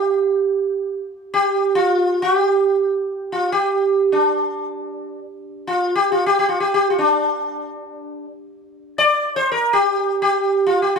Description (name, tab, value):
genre	indian classical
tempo	free time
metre	none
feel	none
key	unclear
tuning	A4 = 440 Hz
part	sitar	solo	0.0-11.0 s	D4 to D5	-17 LUFS	right 1 dB	none
room	light reverb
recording	none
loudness	-16 LUFS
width	side -5 dB against mid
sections	0.0-11.0 A section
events	none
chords	none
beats	free time